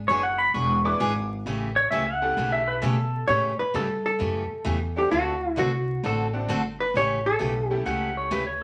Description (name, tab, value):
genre	country, western swing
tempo	131 BPM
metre	4/4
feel	swing 67% on 8ths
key	A mixolydian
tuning	A4 = 441 Hz
part	upright bass	bass	0.0-8.6 s	E1 to B2	-32 LUFS	equal	none
part	pedal steel guitar	second line	0.1-3.3, 7.9-8.6 s	A4 to D6	-26 LUFS	equal	none
part	picked steel-string acoustic guitar	accompaniment	0.1-8.4 s	C#3 to A4	-33 LUFS	equal	none
part	tack piano	accompaniment	0.8-8.3 s	A3 to B4	-36 LUFS	equal	none
part	vintage hollow-body jazz guitar	melody	3.3-7.8 s	F#4 to C#5	-27 LUFS	equal	none
room	wet studio reverb, RT60 0.7 s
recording	vinyl crackle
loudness	-25 LUFS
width	mono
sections	0.0-3.3 A section; 3.3-8.6 B section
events	pedal steel guitar solo 0.0-3.3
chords	0.0 E7; 1.5 A7; 5.1 D7; 6.9 A7